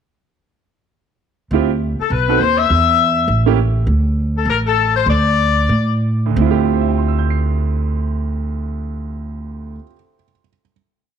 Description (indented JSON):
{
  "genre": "jazz, big band swing",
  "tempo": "173-205 BPM",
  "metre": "4/4",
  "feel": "swing 60% on 8ths",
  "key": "D minor",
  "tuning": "A4 = 442 Hz",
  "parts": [
    { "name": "clear concert grand piano", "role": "accompaniment", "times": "1.5-3.6, 6.3-10.7 s", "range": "D2 to C7", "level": "-20 LUFS", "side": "right 12 dB", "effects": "none" },
    { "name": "upright bass", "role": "bass", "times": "1.5-9.8 s", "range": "A1 to A2", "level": "-17 LUFS", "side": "right 1 dB", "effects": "none" },
    { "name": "clear saxophone section", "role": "melody", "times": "2.0-6.0 s", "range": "A4 to E5", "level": "-16 LUFS", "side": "left 9 dB", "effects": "none" }
  ],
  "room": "light reverb, studio ambience",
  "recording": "1960s-style stereo with parts hard left and right",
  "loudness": "-14 LUFS",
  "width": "side -8 dB against mid",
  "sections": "1.5-6.4 A section; 6.4-9.1 final chord",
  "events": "slowing down 3.9-6.4",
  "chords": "1.5 Dm11; 2.1 B7b9; 2.7 N.C.; 3.3 A7b9; 3.9 D5; 6.4 Dm11"
}